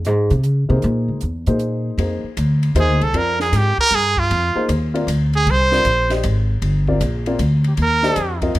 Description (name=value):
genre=modal jazz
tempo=155 BPM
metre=3/4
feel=swing 66% on 8ths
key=F dorian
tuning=A4 = 439 Hz
part: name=upright bass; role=bass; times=0.0-8.6 s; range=G1 to Db3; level=-18 LUFS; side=equal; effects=none
part: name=compact cocktail drum kit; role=drums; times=0.0-8.6 s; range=hi-hat, kick drum, ride cymbal, snare drum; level=-30 LUFS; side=equal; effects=none
part: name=dark grand piano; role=accompaniment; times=0.7-8.5 s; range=Bb3 to Eb5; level=-23 LUFS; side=left 2 dB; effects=none
part: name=brilliant trumpet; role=melody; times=2.8-8.4 s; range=F4 to C5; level=-17 LUFS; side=right 2 dB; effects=none
room=light reverb, small room ambience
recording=rough home demo mix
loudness=-15 LUFS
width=side -16 dB against mid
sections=0.0-2.0 A section; 2.0-8.6 A section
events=upright bass solo 0.0-2.0; trumpet solo 2.0-8.6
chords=0.0 Bbm9; 0.8 C7alt; 2.0 Fm6; 6.6 Cm7